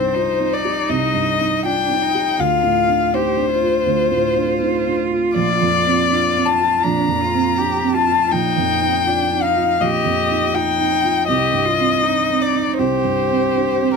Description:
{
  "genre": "neoclassical piano and strings",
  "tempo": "81 BPM",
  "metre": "4/4",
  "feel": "rubato",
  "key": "C dorian",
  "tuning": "A4 = 441 Hz",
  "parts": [
    { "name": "warm violin", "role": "melody", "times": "0.0-14.0 s", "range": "C5 to Bb5", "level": "-18 LUFS", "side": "left 7 dB", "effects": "plate reverb" },
    { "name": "rich cello", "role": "second line", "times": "0.0-14.0 s", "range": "C4 to G4", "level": "-24 LUFS", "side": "right 3 dB", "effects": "none" },
    { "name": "felt-muted upright piano", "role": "accompaniment", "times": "0.0-14.0 s", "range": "Bb1 to G4", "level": "-20 LUFS", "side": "right 6 dB", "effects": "none" }
  ],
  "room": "moderate studio ambience, RT60 0.4 s",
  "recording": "none",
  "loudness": "-15 LUFS",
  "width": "side -5 dB against mid",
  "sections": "0.0-14.0 A section",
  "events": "none",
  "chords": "0.0 Cm; 2.4 Dm7; 5.4 Bbadd9; 8.3 Ebadd9/Bb; 11.3 Cm",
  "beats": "0.15 0.89 1.65 | 2.40 3.14 3.87 4.61 | 5.36 6.10 6.83 7.57 | 8.31 9.06 9.80 10.54 | 11.29 12.04 12.79 13.56"
}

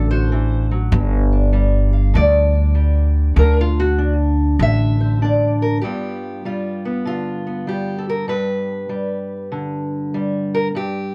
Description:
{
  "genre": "acoustic country blues, solo or duo",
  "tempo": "98 BPM",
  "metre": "4/4",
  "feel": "swing 65% on 8ths",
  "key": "G mixolydian",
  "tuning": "A4 = 439 Hz",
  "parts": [
    { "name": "fingerpicked steel-string acoustic guitar", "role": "melody", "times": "0.0-11.1 s", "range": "G2 to F5", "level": "-23 LUFS", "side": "equal", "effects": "none" },
    { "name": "upright bass", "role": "bass", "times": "0.0-5.8 s", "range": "G1 to D2", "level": "-18 LUFS", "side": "equal", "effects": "none" }
  ],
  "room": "little or no reverb",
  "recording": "close, detailed microphones",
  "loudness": "-19 LUFS",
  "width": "mono",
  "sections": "0.0-5.8 A section; 5.8-11.1 B section",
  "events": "steel-string acoustic guitar solo 0.0-5.8",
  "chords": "0.0 D7; 0.9 G5; 3.4 D5; 5.8 G7",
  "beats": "0.31 | 0.92 1.53 2.15 2.76 | 3.37 3.99 4.60 5.21 | 5.83 6.44 7.06 7.67 | 8.29 8.90 9.52 10.13 | 10.75"
}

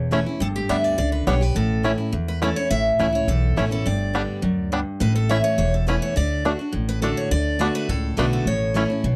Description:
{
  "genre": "bluegrass",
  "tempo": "208 BPM",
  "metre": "4/4",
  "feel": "straight",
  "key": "D major",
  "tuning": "A4 = 440 Hz",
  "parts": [
    { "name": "picked steel-string acoustic guitar", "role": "melody", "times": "0.0-9.2 s", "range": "G4 to E5", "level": "-28 LUFS", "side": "equal", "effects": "none" },
    { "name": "picked steel-string acoustic guitar", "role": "accompaniment", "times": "0.0-9.2 s", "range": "E2 to G4", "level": "-27 LUFS", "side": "equal", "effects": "none" },
    { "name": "upright bass", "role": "bass", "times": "0.0-9.2 s", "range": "E1 to E2", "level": "-26 LUFS", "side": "equal", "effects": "none" },
    { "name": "bluegrass banjo", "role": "arpeggios", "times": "0.1-8.8 s", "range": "G3 to E4", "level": "-25 LUFS", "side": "equal", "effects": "none" }
  ],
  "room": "light reverb",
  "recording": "dry, close 1970s-style studio recording",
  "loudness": "-22 LUFS",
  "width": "mono",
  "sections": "0.0-7.3 A section; 7.3-9.2 A section",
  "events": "none",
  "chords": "0.4 G; 1.6 A; 3.9 G; 5.0 A; 6.2 D; 7.3 D6; 8.5 A",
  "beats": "0.12 | 0.40 0.69 0.98 1.27 | 1.55 1.84 2.13 2.42 | 2.71 2.99 3.28 3.57 | 3.86 4.14 4.43 4.72 | 5.01 5.30 5.58 5.87 | 6.16 6.45 6.74 7.03 | 7.31 7.60 7.89 8.18 | 8.47 8.75 9.04"
}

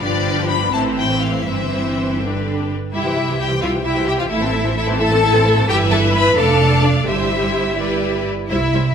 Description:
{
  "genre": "quick classical-period movement for string orchestra",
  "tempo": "79-89 BPM (dotted quarters)",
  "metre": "6/8",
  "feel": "rubato",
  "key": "C major",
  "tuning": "A4 = 440 Hz",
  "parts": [
    { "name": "rich chamber violin section", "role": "melody", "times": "0.0-8.9 s", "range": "D5 to B5", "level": "-23 LUFS", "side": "left 5 dB", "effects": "none" },
    { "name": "rich chamber violin section", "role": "second line", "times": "0.0-8.8 s", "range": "E4 to A5", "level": "-24 LUFS", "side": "left 2 dB", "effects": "none" },
    { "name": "rich chamber viola section", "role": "accompaniment", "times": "0.0-8.8 s", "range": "D3 to G4", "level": "-21 LUFS", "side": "right 1 dB", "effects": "none" },
    { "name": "rich chamber double bass section", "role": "bass", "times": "0.0-8.9 s", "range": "F1 to C2", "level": "-21 LUFS", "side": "right 2 dB", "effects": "none" },
    { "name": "rich studio cello section", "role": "bass", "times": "0.0-8.9 s", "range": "G2 to B4", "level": "-21 LUFS", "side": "equal", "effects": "none" }
  ],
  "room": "moderate scoring stage reverb, RT60 1.7 s",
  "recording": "none",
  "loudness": "-15 LUFS",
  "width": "side -7 dB against mid",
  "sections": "0.0-2.9 A section; 2.9-8.9 B section",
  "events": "none",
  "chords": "0.0 G7; 0.7 Am; 1.5 C/G; 2.2 G; 2.9 C; 4.3 Am; 5.7 Em/G; 6.4 Dm/F; 7.1 C/G",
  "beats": "| 0.03 0.74 | 1.47 2.22 | 2.94 3.63 | 4.31 5.01 | 5.69 6.37 | 7.07 7.79 | 8.50"
}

